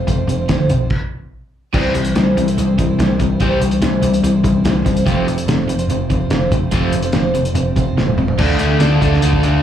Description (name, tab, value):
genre	classic rock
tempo	144 BPM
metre	4/4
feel	straight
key	unclear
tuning	A4 = 439 Hz
part	electric slide guitar	second line	0.0-0.9 s	C5	-33 LUFS	left 6 dB	slapback echo
part	picked steel-string acoustic guitar	accompaniment	0.0-9.6 s	C3 to C5	-23 LUFS	right 3 dB	slapback echo
part	crunchy overdriven guitar	riff	0.0-9.6 s	F2 to D4	-18 LUFS	left 5 dB	spring reverb, slapback echo
part	overdriven electric guitar	riff	0.0-9.6 s	F2 to A4	-22 LUFS	right 11 dB	slapback echo
part	hollow-body short-scale picked electric bass	bass	0.0-9.6 s	F1 to D2	-20 LUFS	right 1 dB	none
part	cloth-damped thuddy drum kit	drums	0.1-9.5 s	crash cymbal, hi-hat, kick drum, snare drum, toms	-20 LUFS	equal	none
room	light reverb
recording	live gig heard through the venue's PA, club reverb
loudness	-13 LUFS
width	side -10 dB against mid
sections	0.0-1.7 A section; 1.7-8.4 B section; 8.4-9.6 C section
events	stop 0.9-1.7; drum fill 8.0-8.4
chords	0.0 F; 1.7 C; 5.1 F; 8.4 Dm